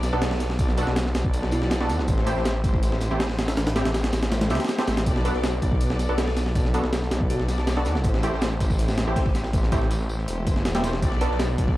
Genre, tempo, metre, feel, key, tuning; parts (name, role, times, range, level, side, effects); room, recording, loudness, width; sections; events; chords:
drum and bass, jungle; 161 BPM; 4/4; straight; B phrygian; A4 = 440 Hz
rich studio string section; sustained chords; 0.0-11.8 s; A3 to D5; -33 LUFS; left 1 dB
detuned saw bass; bass; 0.0-11.8 s; E1 to E2; -25 LUFS; equal
breakbeat sampler-style drum kit; drums; 0.0-11.8 s; hi-hat, kick drum, snare drum; -24 LUFS; equal; small room ambience
crunchy breakbeat drum kit; drums; 0.0-11.8 s; hi-hat, snare drum, tambourine; -42 LUFS; equal; high-pass filter on hats, small room ambience, high-pass filter on snare, high-pass filter on perc, high-pass filter on room
kalimba; melody; 0.1-2.0, 5.2-7.6, 11.2-11.4 s; E4 to B4; -34 LUFS; equal; dub echo
orchestra-hit-like synth stab; stabs; 0.1-11.3 s; A3 to A4; -31 LUFS; right 1 dB; built-in reverb, dub echo
studio ambience; dry, gritty hardware recording, vinyl crackle; -21 LUFS; side -16 dB against mid
0.0-11.8 A section
kick drops out 4.3-5.1
0.0 Bm7; 2.1 Am7; 5.1 Bm7; 8.0 Am7; 11.0 Bm7